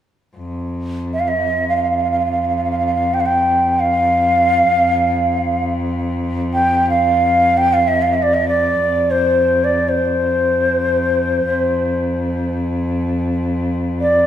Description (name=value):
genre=Arabic maqam ensemble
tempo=free time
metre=none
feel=none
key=F maqam rast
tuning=A4 = 439 Hz
part: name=rich cello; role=drone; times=0.4-14.3 s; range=F2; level=-20 LUFS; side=equal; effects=none
part: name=breathy hollow bansuri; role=melody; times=1.1-14.3 s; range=C5 to G5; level=-15 LUFS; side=equal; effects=none
room=wet large studio reverb, RT60 1.4 s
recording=band playing live in one room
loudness=-14 LUFS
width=side -10 dB against mid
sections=0.4-14.3 A section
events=none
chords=none